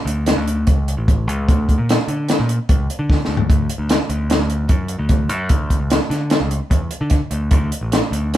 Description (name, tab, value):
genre	math rock and midwest emo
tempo	149 BPM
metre	5/4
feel	straight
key	D major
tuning	A4 = 440 Hz
part	growling picked electric bass	bass	0.1-8.4 s	A1 to D3	-20 LUFS	equal	overdrive
part	compact cocktail drum kit	drums	0.1-8.4 s	hi-hat, kick drum, snare drum, toms	-17 LUFS	equal	none
room	moderate studio reverb, RT60 0.8 s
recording	band playing live in one room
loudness	-15 LUFS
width	side -13 dB against mid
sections	0.0-8.4 A section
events	drum fill 3.1-3.5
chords	none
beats	0.27 0.67 1.07 | 1.48 1.88 2.28 2.69 3.09 | 3.49 3.89 4.29 4.70 5.10 | 5.50 5.90 6.31 6.71 7.11 | 7.51 7.92 8.32